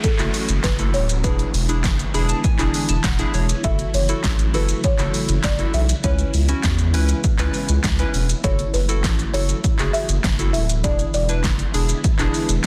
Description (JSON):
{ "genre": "dance-pop", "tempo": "100 BPM", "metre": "4/4", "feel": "straight", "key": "F# minor", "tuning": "A4 = 440 Hz", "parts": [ { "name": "buzzing marimba with soft mallets", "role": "melody", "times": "0.0-11.7 s", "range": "A4 to E5", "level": "-29 LUFS", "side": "equal", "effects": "tape echo" }, { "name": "string machine, violas", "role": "sustained chords", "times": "0.0-12.7 s", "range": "C#3 to F#4", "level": "-32 LUFS", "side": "equal", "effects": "phaser, ensemble chorus, sidechain pumping" }, { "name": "punchy analog drum machine", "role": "drums", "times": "0.0-12.7 s", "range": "handclaps, hi-hat, kick drum, shaker, snare drum", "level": "-24 LUFS", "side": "equal", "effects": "none" }, { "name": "downlifter", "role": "sound effects", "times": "0.0-3.6 s", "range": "none", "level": "-38 LUFS", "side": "equal", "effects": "none" }, { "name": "warm analog keys", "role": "accompaniment", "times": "0.2-12.5 s", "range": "A3 to B5", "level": "-30 LUFS", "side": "equal", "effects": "chorus, sidechain pumping" }, { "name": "saturated sub bass", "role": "bass", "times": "0.2-12.7 s", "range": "D1 to E2", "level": "-23 LUFS", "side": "equal", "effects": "sidechain pumping" } ], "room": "little or no reverb", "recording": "dense, heavily limited modern master", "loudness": "-20 LUFS", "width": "mono", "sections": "0.0-12.7 A section", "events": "synth keys fill 1.8-3.6", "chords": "0.0 F#m7; 1.2 E7; 3.6 F#m7; 6.0 C#m7; 8.4 F#m7; 10.8 E7", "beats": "0.04 0.64 | 1.24 1.84 2.44 3.04 | 3.64 4.24 4.84 5.44 | 6.04 6.64 7.24 7.84 | 8.44 9.04 9.64 10.24 | 10.84 11.44 12.04 12.64" }